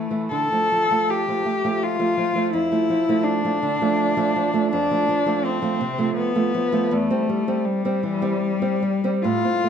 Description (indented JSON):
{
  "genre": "romantic duo for cello and classical guitar",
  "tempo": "68-85 BPM",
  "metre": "3/4",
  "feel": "rubato",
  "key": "C major from 4.7 s",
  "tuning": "A4 = 440 Hz",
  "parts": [
    { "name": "clear cello", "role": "melody", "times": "0.0-9.7 s", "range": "G3 to A4", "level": "-21 LUFS", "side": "left 4 dB", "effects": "none" },
    { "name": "nylon-string guitar", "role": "accompaniment", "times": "0.0-9.7 s", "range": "E2 to C4", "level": "-24 LUFS", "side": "right 6 dB", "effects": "none" }
  ],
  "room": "moderate recital hall reverb, RT60 1.6 s",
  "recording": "minimal, uncompressed stereo recording",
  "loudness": "-19 LUFS",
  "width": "side -8 dB against mid",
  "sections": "0.0-9.7 A section",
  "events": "none",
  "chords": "0.3 Dm (rootless); 2.5 Dm/F; 4.7 F; 6.9 C/E",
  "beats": "| 0.31 1.09 1.81 | 2.53 3.26 3.98 | 4.71 5.43 6.17 | 6.91 7.66 8.41 | 9.25"
}